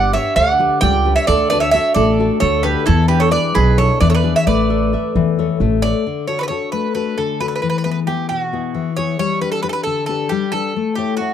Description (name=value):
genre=greek folk, Greek bouzouki band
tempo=266 BPM (eighths)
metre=7/8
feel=straight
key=D major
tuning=A4 = 440 Hz
part: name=Greek bouzouki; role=melody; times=0.0-11.3 s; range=F#4 to G5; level=-18 LUFS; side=right 3 dB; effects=none
part: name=bowl-back mandolin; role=second line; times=0.0-5.6 s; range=E4 to D5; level=-22 LUFS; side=right 7 dB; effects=none
part: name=nylon-string guitar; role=accompaniment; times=0.0-11.3 s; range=B2 to E5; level=-19 LUFS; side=left 8 dB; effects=none
part: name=upright bass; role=bass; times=0.0-5.9 s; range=G1 to E2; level=-18 LUFS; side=right 2 dB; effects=none
room=studio reverb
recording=dry, close 1970s-style studio recording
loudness=-14 LUFS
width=side -9 dB against mid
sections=0.0-6.1 A section; 6.1-11.3 B section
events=speeding up 0.0-11.3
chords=0.0 G; 1.3 D; 2.9 E7; 4.5 Aadd9; 6.1 D; 7.6 E; 9.2 G; 10.8 A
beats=0.13 0.36 0.59 0.82 1.05 | 1.28 1.51 1.74 1.97 2.20 2.42 2.65 | 2.88 3.11 3.34 3.56 3.79 4.02 4.25 | 4.47 4.70 4.92 5.15 5.38 5.60 5.83 | 6.06 6.28 6.51 6.73 6.96 7.18 7.41 | 7.63 7.86 8.08 8.31 8.53 8.75 8.98 | 9.20 9.42 9.65 9.87 10.09 10.32 10.54 | 10.76 10.98 11.20